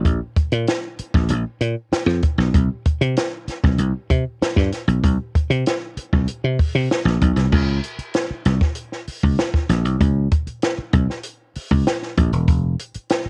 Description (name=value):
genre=funk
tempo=96 BPM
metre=4/4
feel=straight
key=unclear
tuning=A4 = 436 Hz
part: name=dry thumbed slap bass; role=bass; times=0.0-13.3 s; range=E1 to C3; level=-20 LUFS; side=equal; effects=none
part: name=compact cocktail drum kit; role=drums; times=0.1-13.2 s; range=crash cymbal, hi-hat, kick drum, snare drum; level=-22 LUFS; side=equal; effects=cassette tape
room=little or no reverb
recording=home recording on cassette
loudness=-20 LUFS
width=mono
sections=0.0-7.5 A section; 7.5-13.3 B section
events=none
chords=none